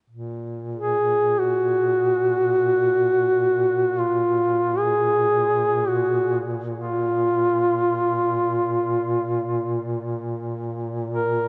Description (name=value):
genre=caucasian folk, Caucasian lament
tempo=free time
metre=none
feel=none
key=unclear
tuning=A4 = 441 Hz
part: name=mellow duduk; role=drone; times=0.1-11.5 s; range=Bb2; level=-30 LUFS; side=equal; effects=none
part: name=dark duduk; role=melody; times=0.8-11.5 s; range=F4 to Bb4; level=-22 LUFS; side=equal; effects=none
room=moderate cathedral reverb, RT60 5.6 s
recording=nothing above 10.7 kHz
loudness=-22 LUFS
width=mono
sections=0.1-11.5 A section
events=none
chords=none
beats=free time